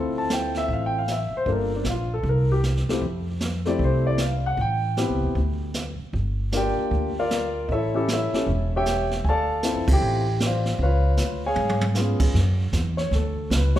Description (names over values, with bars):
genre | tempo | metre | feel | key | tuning
jazz piano trio | 154 BPM | 4/4 | swing 64% on 8ths | D minor | A4 = 441 Hz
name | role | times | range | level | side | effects
warm grand piano | melody | 0.0-13.8 s | G3 to A5 | -25 LUFS | left 1 dB | none
upright bass | bass | 0.0-13.8 s | E1 to G#2 | -24 LUFS | equal | none
jazz brush drum kit | drums | 0.3-13.8 s | brushed snare drum, crash cymbal, hi-hat, kick drum, ride cymbal, snare drum, toms | -28 LUFS | right 1 dB | none
room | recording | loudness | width
moderate recital hall reverb, RT60 1.7 s | recorded in a church or concert hall | -21 LUFS | side -12 dB against mid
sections
0.0-12.3 A section; 12.3-13.8 B section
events
band accent 9.8; drum fill 11.6-12.0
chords
0.0 Dm7; 1.5 Gm7; 2.2 C5; 3.0 Fmaj7; 4.6 Am7; 5.4 N.C.; 6.1 Gm7; 7.7 A7; 9.2 Dm7; 10.8 C#7; 12.3 F#m7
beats
0.30 0.69 1.08 | 1.47 1.86 2.25 2.64 | 3.03 3.42 3.80 4.19 | 4.58 4.97 5.36 5.75 | 6.14 6.53 6.91 7.30 | 7.69 8.08 8.47 8.86 | 9.24 9.63 10.02 10.41 | 10.79 11.18 11.57 11.96 | 12.35 12.73 13.12 13.51